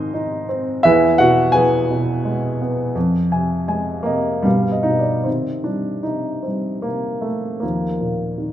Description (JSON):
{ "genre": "classical, lyrical solo piano", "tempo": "73-86 BPM", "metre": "3/4", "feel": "rubato", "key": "C dorian from 5.3 s", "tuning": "A4 = 440 Hz", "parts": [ { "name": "warm baby grand piano", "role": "solo", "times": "0.0-8.5 s", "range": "Eb2 to C6", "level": "-17 LUFS", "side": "equal", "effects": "none" } ], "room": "wet recital hall reverb, RT60 1.5 s", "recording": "minimal, uncompressed stereo recording", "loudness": "-17 LUFS", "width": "side -11 dB against mid", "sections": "0.0-5.3 A section; 5.3-8.5 B section", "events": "grand piano fill 3.0-5.3", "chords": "0.0 Ab; 0.8 E; 3.0 Fm; 4.5 G; 5.3 Cm; 7.6 Ebsus2" }